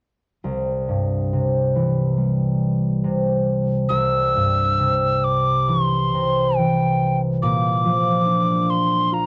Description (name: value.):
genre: celtic folk, Celtic slow air.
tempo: 64-72 BPM.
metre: 4/4.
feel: rubato.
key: C mixolydian.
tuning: A4 = 440 Hz.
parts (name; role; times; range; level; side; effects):
concert harp; accompaniment; 0.4-9.3 s; C2 to F4; -22 LUFS; equal; cassette tape.
mellow hollow mid whistle; melody; 3.9-9.3 s; G5 to E6; -23 LUFS; equal; cassette tape.
room: light reverb.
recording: home recording on cassette.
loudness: -20 LUFS.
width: mono.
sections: 0.4-3.9 A section; 3.9-9.3 B section.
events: none.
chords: 0.4 C; 7.4 Bb.